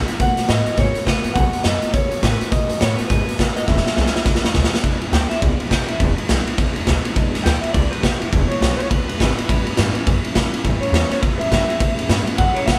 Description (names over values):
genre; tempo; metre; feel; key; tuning
rockabilly; 207 BPM; 4/4; swing 61% on 8ths; E mixolydian; A4 = 440 Hz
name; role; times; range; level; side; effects
picked steel-string acoustic guitar; accompaniment; 0.0-12.8 s; E2 to F#4; -30 LUFS; equal; none
upright bass; bass; 0.0-12.8 s; E1 to B2; -25 LUFS; equal; none
raw garage drum kit; drums; 0.1-12.8 s; hi-hat, kick drum, ride cymbal, snare drum; -21 LUFS; equal; none
electric guitar through a small old amp; melody; 0.2-12.8 s; E4 to G5; -26 LUFS; equal; none
room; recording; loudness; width
moderate studio reverb, RT60 0.9 s; band playing live in one room; -19 LUFS; mono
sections
0.0-4.8 A section; 4.8-12.8 B section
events
drum fill 3.7-4.8; clean electric guitar solo 4.8-12.8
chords
0.2 B7; 3.7 E7; 9.5 A7